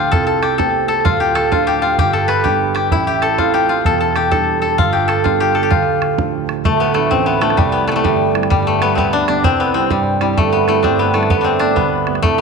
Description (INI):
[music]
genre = celtic folk, Celtic polka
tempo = 129 BPM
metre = 2/4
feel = swing 65% on 8ths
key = D dorian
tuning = A4 = 440 Hz
[part]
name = koto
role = melody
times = 0.0-12.4 s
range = G3 to B4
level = -16 LUFS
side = left 6 dB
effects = slapback echo
[part]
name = baroque flute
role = second line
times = 0.0-12.4 s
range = B4 to B5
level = -25 LUFS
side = left 10 dB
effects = none
[part]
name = cimbalom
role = second line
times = 0.0-12.4 s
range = G3 to B4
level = -20 LUFS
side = right 9 dB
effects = none
[part]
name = dark grand piano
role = accompaniment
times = 0.0-12.4 s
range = D1 to E4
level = -21 LUFS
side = right 7 dB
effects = none
[part]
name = bodhran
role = percussion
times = 0.1-12.4 s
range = none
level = -21 LUFS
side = right 2 dB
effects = none
[sound]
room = moderate echo chamber reverb, RT60 2.6 s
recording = 1960s-style stereo with parts hard left and right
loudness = -13 LUFS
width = side -5 dB against mid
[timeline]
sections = 0.0-6.6 A section; 6.6-12.4 B section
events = none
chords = 0.1 Amadd9/C; 1.1 Dm; 2.0 G; 2.9 Am; 3.9 Em7; 4.8 G; 5.7 Dm; 7.6 C; 8.5 G; 9.4 C; 11.3 Gadd9